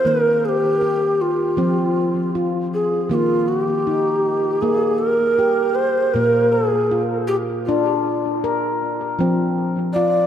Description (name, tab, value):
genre	world meditative, meditative tuned percussion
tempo	79 BPM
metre	4/4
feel	straight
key	unclear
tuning	A4 = 441 Hz
part	breathy mellow low Native American-style wooden flute	melody	0.0-10.3 s	F4 to D5	-18 LUFS	equal	analog delay
part	handpan	arpeggios	0.0-10.3 s	Bb2 to Bb4	-21 LUFS	left 1 dB	analog delay
room	wet plate reverb, RT60 3.3 s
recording	dreamy mix soaked in reverb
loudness	-17 LUFS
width	side -9 dB against mid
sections	0.0-3.1 A section; 3.1-10.3 B section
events	none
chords	0.1 Eb; 1.6 F5; 3.1 Eb; 6.1 Bb; 9.2 F5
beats	| 0.05 0.82 1.58 2.34 | 3.10 3.86 4.62 5.38 | 6.14 6.90 7.67 8.43 | 9.19 9.95